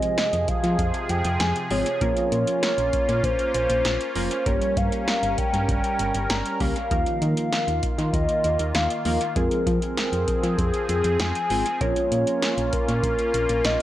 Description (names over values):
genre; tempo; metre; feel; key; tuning
synth-pop; 98 BPM; 4/4; straight; F minor; A4 = 440 Hz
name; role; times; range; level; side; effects
hollow clarinet-like synth lead; melody; 0.0-13.8 s; Ab4 to Bb5; -25 LUFS; equal; chorus, analog delay
funky polysynth comp; accompaniment; 0.0-12.5 s; F3 to Bb4; -30 LUFS; right 1 dB; chorus, analog delay
sweeping resonant pad; sustained chords; 0.0-13.8 s; C3 to Bb4; -29 LUFS; right 1 dB; chorus
electro analog drum machine; drums; 0.0-13.8 s; hi-hat, kick drum, snare drum; -27 LUFS; equal; analog delay
solid FM bass; bass; 0.3-13.8 s; F1 to F3; -26 LUFS; equal; none
room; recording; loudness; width
light reverb; echo-heavy mix; -21 LUFS; side -13 dB against mid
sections
0.0-13.8 A section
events
none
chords
0.0 Fm; 2.0 Bbm; 4.5 Gdim; 6.9 Ebsus2; 9.4 Fm; 11.8 Bbm